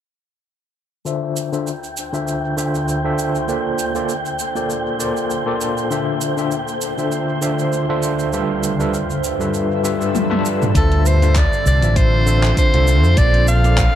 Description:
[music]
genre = sunset chillout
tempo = 99 BPM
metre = 4/4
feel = swing 55% on 16ths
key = D minor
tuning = A4 = 440 Hz
[part]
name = overdriven tine electric piano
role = accompaniment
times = 1.0-13.8 s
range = D3 to E5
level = -21 LUFS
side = moving between left 7 dB and right 5 dB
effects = fast tremolo, auto-pan, low-pass filter, dub echo
[part]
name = shimmering ambient pad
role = sustained chords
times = 2.1-14.0 s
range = D2 to E5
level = -25 LUFS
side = equal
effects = chorus, built-in reverb, phaser
[part]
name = wind-like tuned noise texture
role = texture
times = 1.5-10.8 s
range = G5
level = -28 LUFS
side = right 1 dB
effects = built-in reverb
[part]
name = deep house drum kit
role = drums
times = 1.1-13.9 s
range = cabasa, handclaps, hi-hat, toms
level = -25 LUFS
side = equal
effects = none
[part]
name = fretless electric bass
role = bass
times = 10.7-13.9 s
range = A1 to F2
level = -14 LUFS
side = equal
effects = tube saturation, lush chorus
[part]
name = electronic kick drum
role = drums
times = 10.7-13.9 s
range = none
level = -18 LUFS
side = equal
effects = none
[part]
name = bright soprano saxophone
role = melody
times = 10.8-14.0 s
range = A4 to F5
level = -19 LUFS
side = equal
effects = dub echo
[sound]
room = moderate spring reverb, RT60 2.1 s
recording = echo-heavy mix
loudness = -16 LUFS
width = side -10 dB against mid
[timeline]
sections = 1.1-10.8 A section; 10.8-14.0 B section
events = filter sweep on tine electric piano 1.1-10.8; filter sweep on ambient pad 1.1-10.8; drum fill 10.1-10.8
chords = 1.1 Dm7; 3.5 Bbmaj9; 5.9 Dm7; 8.3 G13; 10.8 Dm7; 13.2 Bbmaj9

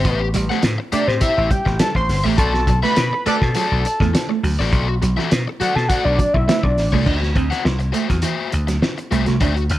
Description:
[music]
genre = funk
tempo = 103 BPM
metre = 4/4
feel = straight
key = unclear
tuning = A4 = 438 Hz
[part]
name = fat analog lead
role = melody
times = 0.0-7.1 s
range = C5 to C6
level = -21 LUFS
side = equal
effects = plate reverb
[part]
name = crunchy overdriven guitar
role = accompaniment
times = 0.0-9.7 s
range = F#4 to F#5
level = -25 LUFS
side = left 6 dB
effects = plate reverb
[part]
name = vintage slap bass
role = bass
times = 0.0-9.8 s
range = G1 to B2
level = -20 LUFS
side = equal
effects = none
[part]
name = cloth-damped thuddy drum kit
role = drums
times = 0.0-9.8 s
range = crash cymbal, hi-hat, kick drum, snare drum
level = -21 LUFS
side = equal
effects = none
[part]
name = mellow electric guitar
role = riff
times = 0.2-9.7 s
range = E3 to D4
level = -24 LUFS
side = right 7 dB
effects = none
[part]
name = warm horn section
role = second line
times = 3.3-3.4 s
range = A4 to D5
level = -23 LUFS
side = right 1 dB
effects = plate reverb
[sound]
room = light reverb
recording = none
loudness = -16 LUFS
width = side -14 dB against mid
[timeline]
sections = 0.0-7.1 A section; 7.1-9.8 B section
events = analog synth lead solo 0.0-7.1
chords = 0.0 Am7; 2.4 Bm7; 7.1 D9

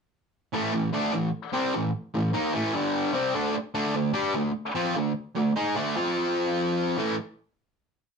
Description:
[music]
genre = rock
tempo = 149 BPM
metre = 4/4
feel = straight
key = unclear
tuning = A4 = 440 Hz
[part]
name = fuzz guitar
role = solo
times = 0.5-7.1 s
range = G2 to G#4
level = -24 LUFS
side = equal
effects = distortion
[sound]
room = wet studio ambience, RT60 0.5 s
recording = band playing live in one room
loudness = -24 LUFS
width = side -5 dB against mid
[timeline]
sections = 0.5-7.0 riff; 7.0-8.2 final chord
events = none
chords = 0.5 A5; 2.7 G5; 3.1 Amadd11; 3.7 D5; 6.0 F5; 7.0 A5

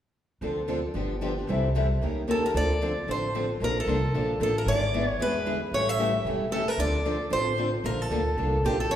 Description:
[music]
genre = acoustic string swing (jazz manouche)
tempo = 226 BPM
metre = 4/4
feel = swing 58% on 8ths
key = D minor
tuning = A4 = 439 Hz
[part]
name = picked steel-string acoustic guitar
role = accompaniment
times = 0.4-9.0 s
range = C3 to Bb4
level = -29 LUFS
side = left 2 dB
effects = none
[part]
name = picked steel-string acoustic guitar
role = accompaniment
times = 0.4-9.0 s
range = C3 to Bb4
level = -34 LUFS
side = right 4 dB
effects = none
[part]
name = upright bass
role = bass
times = 0.4-9.0 s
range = E1 to E2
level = -30 LUFS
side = equal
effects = none
[part]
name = picked steel-string acoustic guitar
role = melody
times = 2.3-9.0 s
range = G4 to E5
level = -28 LUFS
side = equal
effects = none
[sound]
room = wet recital hall reverb, RT60 1.6 s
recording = recorded in a church or concert hall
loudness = -24 LUFS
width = side -10 dB against mid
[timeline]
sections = 0.4-2.5 A section; 2.5-9.0 B section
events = none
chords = 0.4 Dm7; 1.0 G7; 1.5 C6; 2.0 Eb7; 2.5 Dm7; 3.6 Bbmaj7; 4.7 E7/G#; 5.7 A7; 6.8 Dm7; 7.8 Bbmaj7

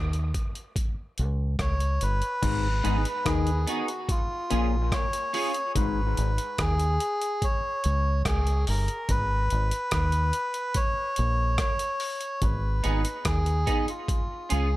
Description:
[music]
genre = dub reggae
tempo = 72 BPM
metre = 4/4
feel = straight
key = G# dorian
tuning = A4 = 439 Hz
[part]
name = deep dub fingered electric bass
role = bass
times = 0.0-14.8 s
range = G1 to D#2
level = -25 LUFS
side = equal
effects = none
[part]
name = breakbeat sampler-style drum kit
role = drums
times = 0.1-14.7 s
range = crash cymbal, hi-hat, kick drum, rim click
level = -30 LUFS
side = equal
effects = none
[part]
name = melodica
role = melody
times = 1.6-14.8 s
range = E#4 to C#5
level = -29 LUFS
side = equal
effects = tape echo
[part]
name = auto-wah clav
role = riff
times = 2.4-6.0 s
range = G#2 to D#3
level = -32 LUFS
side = left 7 dB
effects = overdrive, tape echo
[part]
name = clean electric guitar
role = accompaniment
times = 2.8-5.5, 12.8-14.7 s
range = B3 to G#4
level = -32 LUFS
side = right 4 dB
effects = analog chorus, tape echo
[sound]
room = light reverb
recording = none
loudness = -24 LUFS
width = side -17 dB against mid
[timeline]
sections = 0.0-2.4 A section; 2.4-14.8 B section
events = break 0.0-2.4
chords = 0.0 N.C.; 2.4 G#m; 4.1 C#; 5.8 G#m; 7.4 Gdim (rootless); 9.1 G#m; 10.8 A#m; 12.4 G#m; 14.1 C#

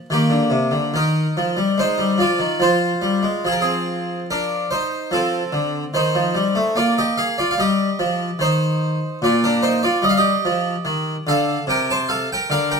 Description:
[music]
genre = classical, baroque-style suite movement for harpsichord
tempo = 73 BPM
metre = 3/4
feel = rubato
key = Eb major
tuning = A4 = 440 Hz
[part]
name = harpsichord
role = solo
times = 0.0-12.8 s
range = Bb2 to A5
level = -17 LUFS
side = equal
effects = none
[sound]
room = moderate stone room reverb, RT60 1.0 s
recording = minimal, uncompressed stereo recording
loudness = -17 LUFS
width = side -5 dB against mid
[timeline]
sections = 0.1-12.8 A section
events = none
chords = 0.1 Eb; 1.8 Ab; 2.6 Fm; 5.1 F7; 6.8 Bb5; 7.6 Eb; 11.7 Gm11/C

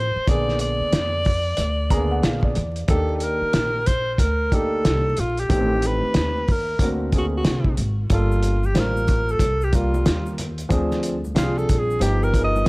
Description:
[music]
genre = hip hop, jazz-hop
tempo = 92 BPM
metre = 4/4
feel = swing 62% on 16ths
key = G minor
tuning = A4 = 440 Hz
[part]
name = breathy alto saxophone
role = melody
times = 0.0-12.6 s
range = F4 to D#5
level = -24 LUFS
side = equal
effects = none
[part]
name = upright bass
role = bass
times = 0.0-12.7 s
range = G1 to F2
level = -24 LUFS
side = equal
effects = none
[part]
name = dark baby grand piano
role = accompaniment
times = 0.3-12.7 s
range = C#3 to Bb5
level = -26 LUFS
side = equal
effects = none
[part]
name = cloth-damped thuddy drum kit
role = drums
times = 0.3-12.7 s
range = hi-hat, kick drum, snare drum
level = -22 LUFS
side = equal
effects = none
[part]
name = egg shaker and congas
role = percussion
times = 8.1-12.7 s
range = none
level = -35 LUFS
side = equal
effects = none
[sound]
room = studio reverb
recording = dry, gritty hardware recording, vinyl crackle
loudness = -18 LUFS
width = side -24 dB against mid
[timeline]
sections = 0.0-8.1 A section; 8.1-12.7 B section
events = grand piano fill 1.6-2.9; alto saxophone solo 8.1-12.7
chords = 0.3 Bb7b9; 2.9 Ebmaj7; 5.5 Am7b5; 6.8 Daug7; 8.1 Gm9; 10.7 Dm7b5; 12.0 G7alt

